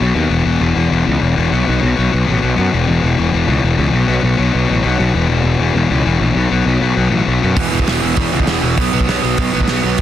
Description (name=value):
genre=punk rock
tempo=198 BPM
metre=4/4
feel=straight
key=unclear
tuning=A4 = 440 Hz
part: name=sludgy distorted guitar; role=riff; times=0.0-10.0 s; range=E2 to B3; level=-16 LUFS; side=left 5 dB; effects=overdrive
part: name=fuzz picked electric bass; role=bass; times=0.0-10.0 s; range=E1 to F#2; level=-16 LUFS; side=right 1 dB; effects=overdrive
part: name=overdriven electric guitar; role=riff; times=7.6-10.0 s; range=E2 to B3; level=-18 LUFS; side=right 15 dB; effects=none
part: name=loose indie drum kit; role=drums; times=7.6-10.0 s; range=hi-hat, kick drum, snare drum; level=-19 LUFS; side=right 1 dB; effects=none
room=little or no reverb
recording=dense, heavily limited modern master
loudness=-12 LUFS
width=side -11 dB against mid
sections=0.0-10.0 A section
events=none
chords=0.3 E5; 1.5 B5; 2.7 E5; 3.9 B5; 5.1 E5; 6.4 B5; 7.6 E5; 8.8 B5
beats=0.01 | 0.31 0.61 0.92 1.22 | 1.52 1.82 2.12 2.42 | 2.73 3.03 3.33 3.63 | 3.93 4.24 4.54 4.84 | 5.14 5.45 5.75 6.05 | 6.35 6.66 6.96 7.26 | 7.56 7.87 8.17 8.47 | 8.78 9.08 9.38 9.68 | 9.99